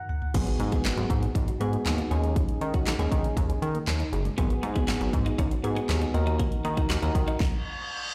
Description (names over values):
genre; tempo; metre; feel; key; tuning
dance-pop; 119 BPM; 4/4; straight; G# minor; A4 = 440 Hz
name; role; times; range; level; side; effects
soft electric-piano-like synth keys; accompaniment; 0.0-7.4 s; B3 to F#5; -35 LUFS; equal; chorus, sidechain pumping
pop drum kit; drums; 0.1-7.5 s; crash cymbal, handclaps, hi-hat, kick drum, snare drum, toms; -30 LUFS; equal; none
thumb-piano-like synth pluck; arpeggios; 0.3-7.2 s; D#3 to D#5; -40 LUFS; equal; chorus, sidechain pumping, delay
chorused synth bass; bass; 0.3-7.3 s; F#1 to D#3; -30 LUFS; equal; sidechain pumping
impact and reverse cymbal; sound effects; 0.3-2.4, 7.5-8.1 s; none; -38 LUFS; equal; none
twelve-string electric guitar; riff; 4.4-7.4 s; A#3 to F#4; -40 LUFS; equal; analog chorus
room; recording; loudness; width
light reverb, digital ambience; played on a big sound system in a bare room, large studio reverb; -27 LUFS; mono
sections
0.3-8.1 A section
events
drum fill 0.0-0.3; synth keys fill 0.0-0.3; impact 0.3-2.4; stop 7.4-8.1; reverse cymbal 7.5-8.1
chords
0.3 G#m7; 2.1 D#7sus4; 4.4 G#m7; 6.1 D#m